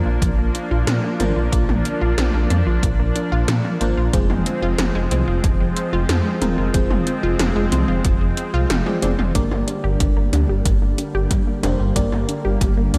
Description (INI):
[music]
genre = synthwave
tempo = 92 BPM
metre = 4/4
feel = straight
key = G phrygian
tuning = A4 = 438 Hz
[part]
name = lush unison pad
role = sustained chords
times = 0.0-13.0 s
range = D3 to D4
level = -28 LUFS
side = equal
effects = chorus, sidechain pumping
[part]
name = FM electric piano with soft pad layer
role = stabs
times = 0.0-13.0 s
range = Ab3 to D5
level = -30 LUFS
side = equal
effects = chorus, tape echo, slapback echo
[part]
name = unison pluck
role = arpeggios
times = 0.1-13.0 s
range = F3 to G4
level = -29 LUFS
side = equal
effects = tape echo, slapback echo
[part]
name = dark detuned saw bass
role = bass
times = 0.1-13.0 s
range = Eb1 to Bb2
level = -23 LUFS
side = equal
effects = none
[part]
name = 80s electronic pad drums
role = drums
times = 0.2-13.0 s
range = hi-hat, snare drum, toms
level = -28 LUFS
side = equal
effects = gated reverb on snare and toms, high-pass filter on hats, high-pass filter on toms, high-pass filter on snare, slapback echo
[part]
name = electronic kick drum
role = drums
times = 0.2-12.7 s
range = none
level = -23 LUFS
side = equal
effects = none
[sound]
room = moderate lush hall reverb, RT60 3.0 s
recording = big arena sound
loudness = -19 LUFS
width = mono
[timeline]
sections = 0.0-9.4 A section; 9.4-13.0 B section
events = filter sweep on synth arpeggio sound 0.0-9.4, 9.4-13.0; drum fill 9.0-9.4, 9.4-13.0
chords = 0.0 Bb; 4.1 Fm; 9.4 Gm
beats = 0.22 0.87 | 1.52 2.18 2.83 3.48 | 4.13 4.79 5.44 6.09 | 6.74 7.39 8.05 8.70 | 9.35 10.00 10.66 11.31 | 11.96 12.61